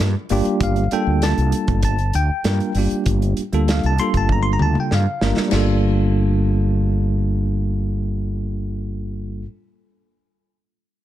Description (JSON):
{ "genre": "electric jazz fusion", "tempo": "98 BPM", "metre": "4/4", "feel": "straight", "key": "G minor", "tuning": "A4 = 439 Hz", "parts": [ { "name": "bell-like tine electric piano", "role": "accompaniment", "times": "0.0-9.5 s", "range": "G3 to C6", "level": "-21 LUFS", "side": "equal", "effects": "fast stereo tremolo, plate reverb" }, { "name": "fretless electric bass", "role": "bass", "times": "0.0-9.4 s", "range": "G1 to G2", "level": "-19 LUFS", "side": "equal", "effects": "wide subtle chorus" }, { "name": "modern studio drum kit", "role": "drums", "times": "0.3-5.7 s", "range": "crash cymbal, hi-hat, kick drum, snare drum, toms", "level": "-24 LUFS", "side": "equal", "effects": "none" } ], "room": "light reverb", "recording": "none", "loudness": "-17 LUFS", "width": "side -13 dB against mid", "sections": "0.0-5.5 A section; 5.5-8.0 B section", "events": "drum fill 4.3-5.5", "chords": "0.0 Gm9", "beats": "0.00 | 0.61 1.23 1.84 2.45 | 3.06 3.68 4.29 4.91 | 5.52 6.13 6.75 7.36" }